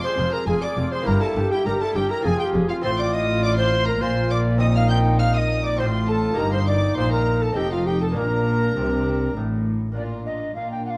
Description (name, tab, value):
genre	classical, baroque-style concerto movement with solo episodes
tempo	101 BPM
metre	3/4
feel	straight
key	Bb major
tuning	A4 = 440 Hz
part	mellow tenor recorder	melody	0.0-11.0 s	F4 to G5	-27 LUFS	equal	none
part	rich chamber violin section	melody	0.0-11.0 s	F5 to G6	-35 LUFS	equal	none
part	rich chamber violin section	second line	0.0-11.0 s	F4 to G6	-35 LUFS	equal	none
part	dark chamber viola section	accompaniment	0.0-11.0 s	D4 to Ab4	-33 LUFS	equal	none
part	lute	accompaniment	0.0-11.0 s	F2 to Bb4	-35 LUFS	equal	none
part	dark chamber cello section	bass	0.2-11.0 s	F2 to C3	-28 LUFS	equal	none
part	warm studio double bass section	bass	0.2-9.9 s	F1 to C2	-28 LUFS	equal	none
room	moderate recital hall reverb, RT60 1.5 s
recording	dark, warm production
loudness	-22 LUFS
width	mono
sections	0.0-10.0 A section; 10.0-11.0 B section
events	none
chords	0.0 Fm; 1.1 Edim/G; 2.2 Fm; 2.8 F/A; 4.0 Bb; 4.6 Cm7/Bb; 5.8 F/A; 6.4 Eb/G; 7.6 F7; 8.2 Bb